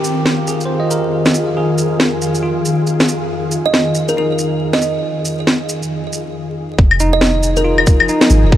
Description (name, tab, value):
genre	future garage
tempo	138 BPM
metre	4/4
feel	swing 61% on 16ths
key	F minor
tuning	A4 = 440 Hz
part	bell-like tine electric piano	accompaniment	0.0-8.6 s	Eb4 to Eb5	-22 LUFS	right 1 dB	vintage 12-bit sampler grit, sidechain pumping, digital delay
part	ethereal airy pad	sustained chords	0.0-8.6 s	F2 to Ab4	-20 LUFS	left 1 dB	ensemble chorus, built-in reverb, sidechain pumping
part	electronic shaker, snare drum and claves	drums	0.0-8.4 s	none	-16 LUFS	left 1 dB	overdrive
part	wind-like tuned noise texture	texture	0.2-6.4 s	F4 to F5	-26 LUFS	left 1 dB	built-in reverb
part	kalimba	melody	3.7-7.9 s	Bb4 to Eb5	-19 LUFS	right 2 dB	digital delay
part	soft 808-style bass	bass	6.8-8.6 s	F1 to Ab1	-15 LUFS	equal	sidechain pumping
part	electronic kick drum	drums	6.8-8.6 s	none	-10 LUFS	equal	none
room	moderate huge ambient reverb, RT60 4.3 s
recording	vinyl crackle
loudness	-13 LUFS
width	side -12 dB against mid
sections	0.0-6.8 A section; 6.8-8.6 B section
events	filter sweep on ambient pad 0.0-6.8; stop 6.3-6.8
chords	0.0 Fm7